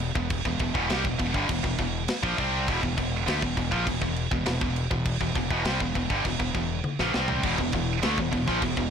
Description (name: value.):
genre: heavy metal.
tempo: 101 BPM.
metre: 4/4.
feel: straight.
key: E minor.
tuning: A4 = 440 Hz.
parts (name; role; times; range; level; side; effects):
heavy high-gain guitar; riff; 0.0-8.9 s; E2 to C4; -27 LUFS; equal; distortion.
growling fingered electric bass; bass; 0.0-8.9 s; E1 to D2; -31 LUFS; left 1 dB; overdrive.
tight metal drum kit; drums; 0.0-8.9 s; crash cymbal, kick drum, snare drum, toms; -30 LUFS; equal; none.
sludgy distorted guitar; riff; 7.4-8.9 s; E2 to A3; -28 LUFS; equal; overdrive.
room: light reverb.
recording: blown-out, overdriven recording, overdrive.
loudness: -24 LUFS.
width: side -7 dB against mid.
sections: 0.0-8.9 A section.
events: drum fill 6.8-7.4.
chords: 0.0 Em.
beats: | 0.31 0.90 1.50 2.09 | 2.68 3.28 3.87 4.47 | 5.06 5.65 6.25 6.84 | 7.43 8.03 8.62.